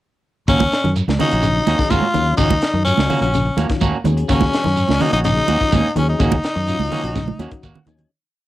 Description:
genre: afrobeat.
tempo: 126 BPM.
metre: 4/4.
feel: straight.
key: Eb minor.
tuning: A4 = 439 Hz.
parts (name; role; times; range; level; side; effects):
raspy tenor saxophone; melody; 0.5-7.8 s; Db4 to F4; -19 LUFS; left 2 dB; none.
clean electric guitar; arpeggios; 0.5-8.1 s; Db3 to Eb3; -27 LUFS; left 6 dB; cassette tape.
electric guitar at the edge of break-up; stabs; 0.5-8.0 s; Bb3 to Gb4; -26 LUFS; right 5 dB; cassette tape.
fingered electric bass; bass; 0.5-8.0 s; Bb1 to Gb2; -20 LUFS; equal; none.
tight funk drum kit; drums; 0.5-8.1 s; hi-hat, kick drum, snare drum; -23 LUFS; equal; cassette tape.
congas; percussion; 0.5-8.1 s; none; -22 LUFS; right 6 dB; none.
shekere; percussion; 0.5-8.0 s; none; -27 LUFS; right 2 dB; none.
mellow tonewheel organ; accompaniment; 1.2-8.1 s; Gb3 to Ab5; -28 LUFS; left 6 dB; slow rotary speaker, cassette tape.
room: light reverb.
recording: home recording on cassette.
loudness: -15 LUFS.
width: side -15 dB against mid.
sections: 0.5-8.1 groove.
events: fade-out 6.2-8.1; drum fill 7.2-8.1; tonewheel organ fill 7.4-8.1.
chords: 0.5 Ebm7.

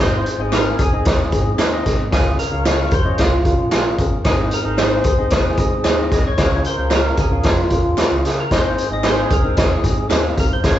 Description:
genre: uptempo 1960s-style soul.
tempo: 113 BPM.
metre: 4/4.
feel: straight.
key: Ab major.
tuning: A4 = 438 Hz.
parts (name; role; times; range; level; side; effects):
percussive tonewheel organ; melody; 0.0-10.8 s; F4 to Eb5; -23 LUFS; equal; overdrive, slow rotary speaker.
mellow horn section; second line; 0.0-10.8 s; Eb3 to Db5; -28 LUFS; equal; none.
barky tine electric piano; accompaniment; 0.0-10.8 s; Ab2 to F5; -25 LUFS; left 2 dB; overdrive.
vintage muted fingered electric bass; bass; 0.0-10.8 s; G1 to Db3; -23 LUFS; equal; none.
tambourine and handclaps; percussion; 0.0-10.8 s; none; -34 LUFS; left 1 dB; none.
raw garage drum kit; drums; 0.3-10.8 s; hi-hat, kick drum, snare drum; -17 LUFS; equal; none.
electric guitar through a small old amp; stabs; 0.5-10.2 s; Eb4 to Db5; -25 LUFS; right 4 dB; none.
room: moderate large studio reverb, RT60 0.8 s.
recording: band playing live in one room, nothing above 7.8 kHz.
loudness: -15 LUFS.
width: side -12 dB against mid.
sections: 0.0-10.8 A section.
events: none.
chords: 0.0 Ab; 2.1 Db; 4.3 Ab; 6.4 Db; 8.5 Ab.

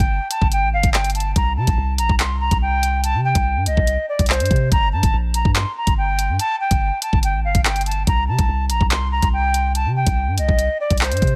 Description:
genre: hip hop, drill.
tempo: 143 BPM.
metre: 4/4.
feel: half-time.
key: unclear.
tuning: A4 = 440 Hz.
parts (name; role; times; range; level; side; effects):
silver concert flute; melody; 0.0-11.4 s; C5 to C6; -24 LUFS; equal; low-pass filter, digital delay.
long sustained 808-style bass; bass; 0.0-11.4 s; G1 to C3; -23 LUFS; equal; none.
drill drum kit; drums; 0.0-11.3 s; handclaps, hi-hat, kick drum; -21 LUFS; equal; none.
room: light reverb.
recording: none.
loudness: -19 LUFS.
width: mono.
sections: 0.0-11.4 A section.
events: none.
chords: 0.0 N.C.; 1.4 C5; 4.7 N.C.; 8.1 C5.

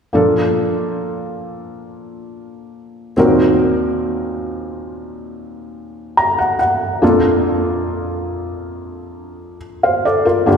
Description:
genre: pop.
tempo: 70 BPM.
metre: 4/4.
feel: straight.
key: Bb major.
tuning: A4 = 439 Hz.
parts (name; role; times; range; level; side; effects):
felt-muted upright piano; accompaniment; 0.1-10.6 s; Bb1 to Bb5; -16 LUFS; equal; none.
room: wet concert hall reverb, RT60 2.4 s.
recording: recorded in a church or concert hall.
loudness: -14 LUFS.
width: side -6 dB against mid.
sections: 0.1-10.6 A section.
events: felt piano fill 5.7-7.0.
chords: 0.1 Bbmaj7; 3.2 Ebm6; 7.0 Bbmaj7.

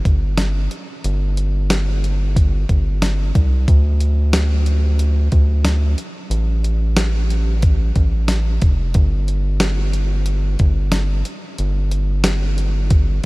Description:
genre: dream pop.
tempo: 91 BPM.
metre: 4/4.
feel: straight.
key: unclear.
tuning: A4 = 438 Hz.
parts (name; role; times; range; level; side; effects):
round analog bass; bass; 0.1-13.2 s; F1 to D2; -17 LUFS; equal; none.
clean 12-bit digital drum machine; drums; 0.1-13.3 s; hi-hat, kick drum, snare drum, tambourine; -19 LUFS; equal; none.
room: little or no reverb.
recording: none.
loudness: -15 LUFS.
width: side -22 dB against mid.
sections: 0.0-13.3 A section.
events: none.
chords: none.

